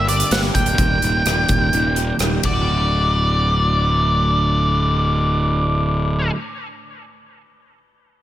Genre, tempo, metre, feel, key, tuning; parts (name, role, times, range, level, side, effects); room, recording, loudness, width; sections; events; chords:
quiet-loud alternative rock; 126 BPM; 4/4; straight; D major; A4 = 440 Hz
octave-fuzz lead guitar; melody; 0.0-6.3 s; D5 to G5; -20 LUFS; left 1 dB; distortion, slapback echo, tape echo
electric guitar through a small old amp; arpeggios; 0.0-6.4 s; D2 to G4; -25 LUFS; right 1 dB
fuzz fingered electric bass; bass; 0.0-6.3 s; D1 to G1; -19 LUFS; equal; overdrive
big rock drum kit; drums; 0.1-2.5 s; hi-hat, kick drum, ride cymbal, rim click, snare drum; -22 LUFS; equal
moderate lush hall reverb, RT60 2.2 s; big arena sound; -15 LUFS; side -13 dB against mid
0.0-2.7 A section; 2.7-6.5 B section
0.0 Gm; 0.8 Eb; 2.4 D